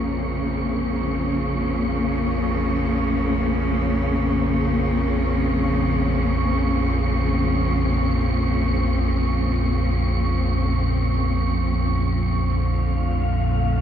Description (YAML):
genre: dark ambient drone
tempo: free time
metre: none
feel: none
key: Bb minor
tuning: A4 = 440 Hz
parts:
  - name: bright studio cello section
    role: sustained chords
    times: 0.0-13.8 s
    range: Db3 to C4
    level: -23 LUFS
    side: left 1 dB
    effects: shimmer reverb
  - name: dark grand piano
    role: arpeggios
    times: 0.0-12.5 s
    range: Ab2 to Bb3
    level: -36 LUFS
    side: left 2 dB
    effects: none
  - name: deep rumbling drone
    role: drone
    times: 0.0-13.8 s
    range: Bb1 to F2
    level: -22 LUFS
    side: equal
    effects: built-in reverb
  - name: wind-like tuned noise texture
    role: texture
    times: 0.0-13.8 s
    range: F5 to Db6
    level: -31 LUFS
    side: right 3 dB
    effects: built-in reverb, shimmer reverb
room: wet cathedral reverb, RT60 5.0 s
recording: dark, warm production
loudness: -19 LUFS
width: side -9 dB against mid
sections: 0.0-13.8 A section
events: none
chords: 0.0 Bbm; 12.4 Dm